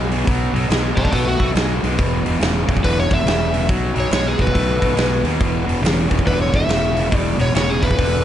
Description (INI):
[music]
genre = blues rock power trio and southern rock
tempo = 140 BPM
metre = 4/4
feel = swing 63% on 8ths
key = unclear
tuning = A4 = 440 Hz
[part]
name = sludgy distorted guitar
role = riff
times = 0.0-8.2 s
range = E2 to A3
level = -21 LUFS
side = equal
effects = overdrive
[part]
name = fuzz fingered electric bass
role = bass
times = 0.0-8.2 s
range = E1 to D#2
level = -21 LUFS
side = equal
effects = overdrive
[part]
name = big rock drum kit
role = drums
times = 0.1-8.1 s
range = hi-hat, kick drum, snare drum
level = -21 LUFS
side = equal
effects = none
[part]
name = overdriven slide guitar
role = melody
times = 1.0-8.2 s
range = F#4 to E5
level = -23 LUFS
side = equal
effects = none
[sound]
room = light reverb, studio reverb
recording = nothing above 10.7 kHz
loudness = -15 LUFS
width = side -11 dB against mid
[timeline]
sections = 0.0-8.2 A section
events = none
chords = 0.0 B5; 2.0 E5; 3.7 B7(no3); 5.4 E5